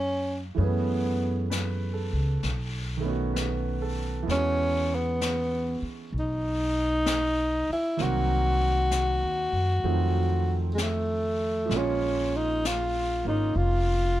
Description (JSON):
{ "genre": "jazz ballad", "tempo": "65 BPM", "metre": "4/4", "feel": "swing 67% on 8ths", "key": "unclear", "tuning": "A4 = 440 Hz", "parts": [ { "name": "mellow tenor saxophone", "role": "melody", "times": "0.0-14.2 s", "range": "Ab3 to Gb4", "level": "-27 LUFS", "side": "left 1 dB", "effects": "none" }, { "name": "clear grand piano", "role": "accompaniment", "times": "0.0-14.2 s", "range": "D#3 to F5", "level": "-32 LUFS", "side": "right 5 dB", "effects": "none" }, { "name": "upright bass", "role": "bass", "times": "0.0-14.2 s", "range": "F1 to Gb2", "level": "-28 LUFS", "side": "equal", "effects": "none" }, { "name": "jazz brush drum kit", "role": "drums", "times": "0.6-14.2 s", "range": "brushed snare drum, hi-hat, snare drum", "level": "-37 LUFS", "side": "left 4 dB", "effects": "none" } ], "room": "little or no reverb", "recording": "none", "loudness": "-24 LUFS", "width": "side -14 dB against mid", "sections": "0.0-14.2 A section", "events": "none", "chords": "0.0 Ebm9; 0.6 Gbm11; 2.4 B9; 4.3 E69; 8.0 Cm7b5; 9.8 F7b9; 11.7 Bbm7" }